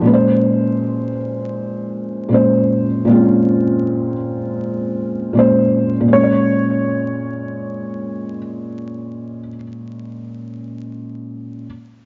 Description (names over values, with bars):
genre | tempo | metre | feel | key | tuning
hip hop | 79 BPM | 4/4 | swing 56% on 16ths | Bb minor | A4 = 439 Hz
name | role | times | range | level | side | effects
felt-muted upright piano | accompaniment | 0.0-11.7 s | Bb2 to Db5 | -18 LUFS | equal | cassette tape, low-pass filter
dark upright piano | melody | 6.1-8.4 s | Db5 | -22 LUFS | equal | low-pass filter
room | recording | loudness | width
light reverb, small room ambience | dark, warm production, vinyl crackle, nothing above 7.5 kHz | -17 LUFS | mono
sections
0.0-6.1 A section; 6.1-9.1 B section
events
none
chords
0.0 Bbm9; 6.1 Bbm7